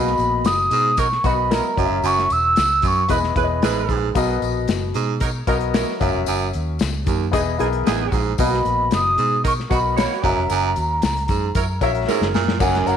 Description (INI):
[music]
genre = uptempo 1960s-style soul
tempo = 114 BPM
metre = 4/4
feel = straight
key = B major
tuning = A4 = 440 Hz
[part]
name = mellow hollow concert flute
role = melody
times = 0.0-3.9, 8.4-13.0 s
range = G#5 to E6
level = -20 LUFS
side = right 1 dB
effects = none
[part]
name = warm upright piano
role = accompaniment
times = 0.0-13.0 s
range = B2 to F#5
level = -24 LUFS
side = left 10 dB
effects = none
[part]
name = bright baritone saxophone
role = riff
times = 0.0-13.0 s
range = D#2 to B2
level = -25 LUFS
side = right 10 dB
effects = none
[part]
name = vintage muted fingered electric bass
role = bass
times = 0.0-13.0 s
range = E1 to B2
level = -24 LUFS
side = equal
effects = none
[part]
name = warm soul drum kit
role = drums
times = 0.1-13.0 s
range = crash cymbal, hi-hat, kick drum, snare drum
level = -23 LUFS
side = left 2 dB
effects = none
[part]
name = tambourine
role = percussion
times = 0.2-13.0 s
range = none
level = -36 LUFS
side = left 13 dB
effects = none
[part]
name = warm saxophone section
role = second line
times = 1.0-13.0 s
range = D#3 to C#5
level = -26 LUFS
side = right 11 dB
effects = none
[sound]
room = moderate echo chamber reverb, RT60 1.3 s, small room ambience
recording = 1960s-style stereo with parts hard left and right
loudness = -17 LUFS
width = side -8 dB against mid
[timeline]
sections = 0.0-12.6 A section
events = drum fill 12.1-12.6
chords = 0.0 Bmaj7; 1.8 F#7; 3.1 Emaj7; 4.2 Bmaj7; 6.0 F#7; 7.3 Emaj7; 8.4 Bmaj7; 10.2 F#7